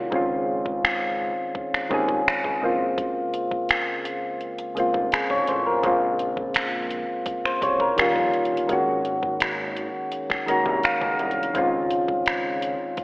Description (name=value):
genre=contemporary R&B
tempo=84 BPM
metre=4/4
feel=straight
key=Db major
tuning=A4 = 444 Hz
part: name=soft electric-piano-like synth keys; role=accompaniment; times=0.0-13.0 s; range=Db3 to Bb5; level=-23 LUFS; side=equal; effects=chorus
part: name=fat analog bass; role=bass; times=0.0-12.8 s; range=F1 to F2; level=-32 LUFS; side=equal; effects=none
part: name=smooth R&B drum kit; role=drums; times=0.1-13.0 s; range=finger snaps, hi-hat, kick drum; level=-26 LUFS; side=equal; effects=none
room=wet lush hall reverb, RT60 2.0 s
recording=dreamy mix soaked in reverb, telephone sound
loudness=-21 LUFS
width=side -23 dB against mid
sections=0.0-13.0 A section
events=synth keys fill 10.1-11.5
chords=0.1 Dbmaj9; 2.6 Gbmaj9#11; 5.8 Bbm9; 8.0 Eb9; 8.7 Ab9sus4; 11.5 Dbmaj9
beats=| 0.12 0.83 1.55 2.26 | 2.98 3.69 4.41 5.12 | 5.83 6.55 7.26 7.98 | 8.69 9.40 10.12 10.83 | 11.55 12.26 12.98